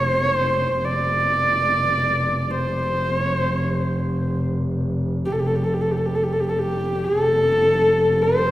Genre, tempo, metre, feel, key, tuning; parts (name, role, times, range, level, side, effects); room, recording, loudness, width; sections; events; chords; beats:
mongolian traditional, Mongolian folk; free time; F gong mode; A4 = 440 Hz
dark horsehead fiddle; melody; 0.0-8.5 s; G4 to D5; -19 LUFS; equal
rich double bass; drone; 0.0-8.5 s; F1; -24 LUFS; equal
wet recital hall reverb, RT60 1.8 s; heard from further back in the room; -18 LUFS; side -14 dB against mid
0.0-8.5 A section
free time